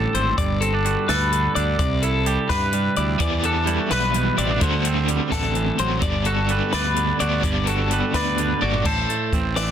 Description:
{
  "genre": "math rock and midwest emo",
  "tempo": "85 BPM (dotted quarters)",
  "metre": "6/8",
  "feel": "straight",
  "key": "G major",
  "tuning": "A4 = 442 Hz",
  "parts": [
    { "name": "twangy electric guitar", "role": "accompaniment", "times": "0.0-9.7 s", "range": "G2 to D5", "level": "-24 LUFS", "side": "right 7 dB", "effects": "plate reverb" },
    { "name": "twelve-string electric guitar", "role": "arpeggios", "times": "0.0-9.7 s", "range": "A4 to D5", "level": "-24 LUFS", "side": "left 7 dB", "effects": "plate reverb" },
    { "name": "fuzz fingered electric bass", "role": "bass", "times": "0.0-9.7 s", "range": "G1 to G2", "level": "-24 LUFS", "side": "equal", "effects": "overdrive" },
    { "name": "compact cocktail drum kit", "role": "drums", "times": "0.1-9.7 s", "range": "crash cymbal, hi-hat, kick drum, snare drum, toms", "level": "-26 LUFS", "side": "equal", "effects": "none" },
    { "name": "overdriven electric guitar", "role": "riff", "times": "3.2-8.9 s", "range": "G2 to F#4", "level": "-25 LUFS", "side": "equal", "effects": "tremolo" }
  ],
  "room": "light reverb",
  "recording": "dense, heavily limited modern master",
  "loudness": "-18 LUFS",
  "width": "side -9 dB against mid",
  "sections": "0.0-8.9 A section",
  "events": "drum fill 8.6",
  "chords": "0.4 Gmaj9; 1.8 Cmaj9; 3.2 Em9; 4.6 D7sus4; 6.0 Gmaj9; 8.9 Am7"
}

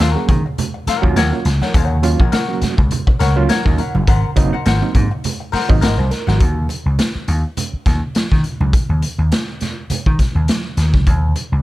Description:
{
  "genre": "funk",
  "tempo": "103 BPM",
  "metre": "4/4",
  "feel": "swing 56% on 16ths",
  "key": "Eb dorian",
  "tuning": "A4 = 440 Hz",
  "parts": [
    { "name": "archtop guitar, miked and amplified", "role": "accompaniment", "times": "0.0-6.4 s", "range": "Bb4 to Gb5", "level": "-23 LUFS", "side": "left 6 dB", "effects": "wah" },
    { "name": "overdriven reed electric piano", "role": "stabs", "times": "0.0-6.6 s", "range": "Gb3 to Eb5", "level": "-23 LUFS", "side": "right 6 dB", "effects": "fast tremolo" },
    { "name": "vintage slap bass", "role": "bass", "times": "0.0-11.6 s", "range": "Gb1 to Eb3", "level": "-16 LUFS", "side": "equal", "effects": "none" },
    { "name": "raw garage drum kit", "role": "drums", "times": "0.0-11.5 s", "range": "hi-hat, kick drum, snare drum", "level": "-17 LUFS", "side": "equal", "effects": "none" },
    { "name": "congas", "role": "percussion", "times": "0.0-11.5 s", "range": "none", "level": "-27 LUFS", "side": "right 5 dB", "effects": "none" }
  ],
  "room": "small room ambience",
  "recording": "dark, warm production",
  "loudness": "-14 LUFS",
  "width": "side -17 dB against mid",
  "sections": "0.0-6.4 A section; 6.4-11.6 B section",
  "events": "none",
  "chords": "0.0 Ebm7; 4.1 Ab9; 6.4 N.C."
}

